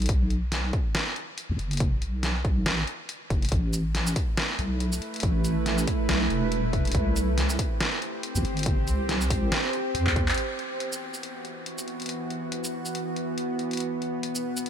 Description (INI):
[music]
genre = deep dubstep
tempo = 140 BPM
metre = 4/4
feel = swing 56% on 16ths, half-time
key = E minor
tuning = A4 = 440 Hz
[part]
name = deep soft wobble bass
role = bass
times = 0.0-10.4 s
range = E1 to E2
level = -27 LUFS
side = equal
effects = chorus
[part]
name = dubstep drum kit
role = drums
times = 0.0-14.7 s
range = handclaps, hi-hat, shaker, snare drum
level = -30 LUFS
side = equal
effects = none
[part]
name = electronic kick drum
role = drums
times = 0.1-10.3 s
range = none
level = -27 LUFS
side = equal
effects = none
[part]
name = bowed-like drone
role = sustained chords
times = 4.5-14.7 s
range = B2 to C5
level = -30 LUFS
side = right 2 dB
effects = built-in reverb
[sound]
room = little or no reverb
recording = none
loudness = -24 LUFS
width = side -9 dB against mid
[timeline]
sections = 0.0-10.4 A section; 10.4-14.7 B section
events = drum fill 10.1-10.4; band accent 10.3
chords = 0.1 B5; 3.5 Asus2; 6.9 C; 10.4 Esus2; 13.8 B5